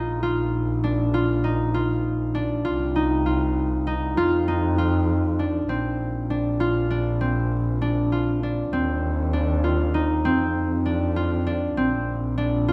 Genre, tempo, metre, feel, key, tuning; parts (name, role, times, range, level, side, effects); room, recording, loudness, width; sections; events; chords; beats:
contemporary instrumental, chamber music in an uneven meter; 198 BPM (eighths); 5/8; straight; Bb major; A4 = 439 Hz
concert harp; arpeggios; 0.0-12.7 s; C4 to F4; -26 LUFS; equal
rich double bass; bass; 0.0-12.7 s; Bb1 to F2; -27 LUFS; equal
moderate recital hall reverb, RT60 1.4 s; -23 LUFS; mono
0.0-5.7 A section; 5.7-12.7 B section
0.0 Bb5; 2.7 Cm; 4.2 Dm/F; 5.7 Bbadd9; 8.7 Cmadd9/Eb; 10.3 F5; 11.8 Bbadd9
0.23 0.54 0.84 | 1.14 1.45 1.75 2.05 2.36 | 2.66 2.96 3.27 3.57 3.87 | 4.18 4.48 4.78 5.09 5.39 | 5.69 6.00 6.30 6.60 6.91 | 7.21 7.52 7.82 8.12 8.43 | 8.73 9.04 9.34 9.64 9.95 | 10.25 10.56 10.86 11.16 11.47 | 11.77 12.08 12.38 12.69